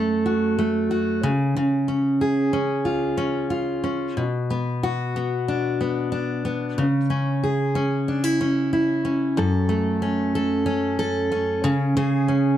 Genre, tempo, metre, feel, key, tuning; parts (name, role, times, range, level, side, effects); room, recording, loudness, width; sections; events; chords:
pop; 92 BPM; 4/4; straight; F# minor; A4 = 439 Hz
picked steel-string acoustic guitar; solo; 0.0-12.6 s; F#2 to A4; -20 LUFS; equal
light reverb; dark, warm production; -20 LUFS; side -11 dB against mid
0.0-9.4 A section; 9.4-12.6 B section
0.0 F#m; 1.2 C#; 4.2 Bm; 6.8 C#m; 9.4 F#m; 11.6 C#5